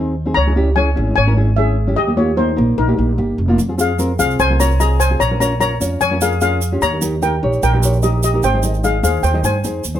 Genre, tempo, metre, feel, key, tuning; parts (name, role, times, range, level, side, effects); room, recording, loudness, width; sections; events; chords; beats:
calypso; 149 BPM; 4/4; straight; A4 = 445 Hz
steel pan; melody; 0.0-9.8 s; Eb4 to Bb5; -18 LUFS; left 3 dB; plate reverb
nylon-string guitar; accompaniment; 0.0-10.0 s; Bb3 to Eb5; -20 LUFS; equal
upright bass; bass; 0.0-10.0 s; F1 to G2; -17 LUFS; right 1 dB
tube shaker; percussion; 3.6-10.0 s; -26 LUFS; right 6 dB
light reverb; close, detailed microphones; -14 LUFS; side -11 dB against mid
0.0-10.0 A section
0.4 Dbm; 2.0 Ebadd9; 3.6 Fm; 5.2 Bbm7; 6.8 Eb7; 8.4 Abmaj7
| 0.36 0.77 1.17 1.57 | 1.98 2.38 2.79 3.19 | 3.59 4.00 4.40 4.80 | 5.21 5.61 6.01 6.42 | 6.82 7.22 7.63 8.03 | 8.43 8.84 9.24 9.64